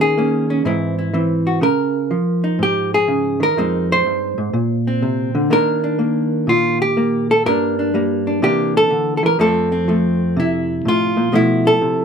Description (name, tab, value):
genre	solo jazz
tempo	124 BPM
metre	4/4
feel	swing 67% on 8ths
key	F major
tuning	A4 = 440 Hz
part	hollow-body jazz guitar	solo	0.0-12.0 s	F2 to C5	-15 LUFS	equal	none
room	moderate small room reverb, RT60 0.6 s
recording	minimal, uncompressed stereo recording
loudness	-15 LUFS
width	side -6 dB against mid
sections	0.0-12.0 A section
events	none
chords	0.0 Eb7sus4; 0.7 Abaug7; 1.6 Db69; 3.6 Fm7; 4.5 Bbadd9; 5.5 Ebmaj7; 7.5 Gm; 8.4 C13; 9.4 Fmaj7; 11.3 B7(b5, no3)